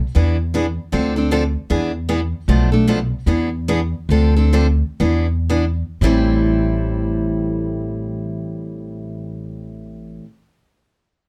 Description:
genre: acoustic string swing (jazz manouche).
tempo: 108-155 BPM.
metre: 4/4.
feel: swing 62% on 8ths.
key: A minor.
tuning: A4 = 440 Hz.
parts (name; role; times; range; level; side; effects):
picked steel-string acoustic guitar; accompaniment; 0.1-10.3 s; A2 to A4; -22 LUFS; equal; none.
upright bass; bass; 0.2-10.2 s; A1 to E2; -21 LUFS; equal; none.
room: light reverb.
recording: dark, warm production.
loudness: -19 LUFS.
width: mono.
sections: 0.0-6.0 A section; 6.0-10.4 B section.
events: slowing down 2.5-6.0.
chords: 0.1 E7; 0.9 Dm7; 1.7 E7; 2.5 Bm7b5; 3.3 E7; 4.1 Dm7; 5.0 E7; 6.0 Am7.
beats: 0.14 0.53 | 0.92 1.31 1.69 2.08 | 2.47 2.86 3.25 3.66 | 4.08 4.52 4.99 5.48 | 6.01 6.56 7.12 7.67 | 8.22 8.78 9.33 9.88.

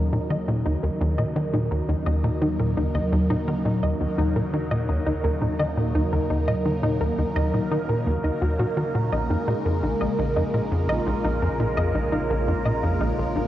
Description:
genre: ambient, sequencer-driven space music.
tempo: 85 BPM.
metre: 4/4.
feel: straight.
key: Eb minor.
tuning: A4 = 439 Hz.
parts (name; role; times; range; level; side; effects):
phased analog pad; sustained chords; 0.0-13.5 s; Db3 to Bb4; -26 LUFS; right 1 dB; phaser, chorus.
wide unison pluck; arpeggios; 0.0-13.5 s; Bb3 to Eb5; -29 LUFS; left 1 dB; auto-pan, ping-pong delay.
tight sequencer bass; riff; 0.0-13.5 s; Bb1 to Eb3; -25 LUFS; equal; ping-pong delay.
analog drone; bass; 0.1-13.5 s; Bb1 to Eb2; -33 LUFS; equal; chorus, phaser.
room: wet huge ambient reverb, RT60 8.1 s.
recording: worn, warbling old tape, cassette tape, warbly pitch drift.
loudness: -21 LUFS.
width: side -13 dB against mid.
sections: 0.0-13.5 A section.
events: none.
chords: 0.0 Ebm7; 9.1 Bbm7.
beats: | 0.66 1.36 2.07 2.77 | 3.48 4.18 4.89 5.60 | 6.30 7.01 7.71 8.42 | 9.13 9.83 10.54 11.24 | 11.95 12.65 13.36.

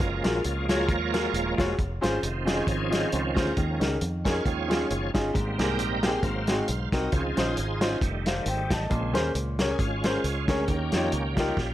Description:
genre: uptempo gospel.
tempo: 135 BPM.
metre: 4/4.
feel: swing 55% on 8ths.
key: Ab major.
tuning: A4 = 440 Hz.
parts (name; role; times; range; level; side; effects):
bright tonewheel organ; sustained chords; 0.0-11.7 s; Db3 to F5; -30 LUFS; right 3 dB; fast rotary speaker, overdrive, chorus vibrato.
fingered electric bass; bass; 0.0-11.7 s; Eb1 to F2; -31 LUFS; equal; none.
warm soul drum kit; drums; 0.0-11.7 s; hi-hat, kick drum, snare drum; -28 LUFS; equal; none.
clear concert grand piano; accompaniment; 0.2-11.5 s; Ab2 to A5; -29 LUFS; left 1 dB; none.
room: light reverb.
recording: none.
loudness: -24 LUFS.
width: side -13 dB against mid.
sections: 0.0-11.7 A section.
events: tonewheel organ solo 0.0-11.7; drum fill 11.6.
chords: 0.0 Gbmaj9; 1.8 Dbmaj7/F; 3.6 Eb7sus4; 4.5 Eb9sus4; 5.3 Abmaj9; 6.2 Ab7; 7.1 Dbmaj9; 8.0 F7; 8.9 Bbm9; 10.7 Eb9.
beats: | 0.00 0.45 0.89 1.34 | 1.78 2.23 2.68 3.12 | 3.57 4.01 4.46 4.90 | 5.35 5.79 6.24 6.69 | 7.13 7.58 8.02 8.47 | 8.91 9.36 9.80 10.25 | 10.69 11.13 11.58.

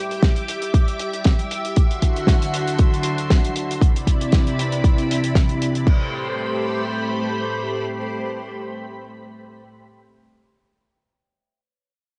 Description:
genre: nu-disco, nu disco.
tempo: 117 BPM.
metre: 4/4.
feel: swing 54% on 16ths.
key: A dorian.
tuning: A4 = 440 Hz.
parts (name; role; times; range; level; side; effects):
string machine, full ensemble; sustained chords; 0.0-9.8 s; C3 to D6; -26 LUFS; equal; ensemble chorus, sidechain pumping, cassette tape.
damped 70s drum kit; drums; 0.1-6.0 s; crash cymbal, hi-hat, snare drum; -27 LUFS; equal; cassette tape.
electronic kick drum; drums; 0.2-6.0 s; none; -19 LUFS; equal; cassette tape.
room: moderate small room ambience, RT60 0.5 s.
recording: home recording on cassette, nothing above 10.5 kHz.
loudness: -20 LUFS.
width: mono.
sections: 0.0-5.9 A section; 5.9-10.0 B section.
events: none.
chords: 0.0 Em7; 1.8 D9; 3.8 Cmaj9; 5.9 Am9.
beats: 0.23 0.74 1.25 | 1.77 2.28 2.79 3.30 | 3.82 4.33 4.84 5.36 | 5.87 6.38 6.89 7.41 | 7.92 8.43 8.95 9.46.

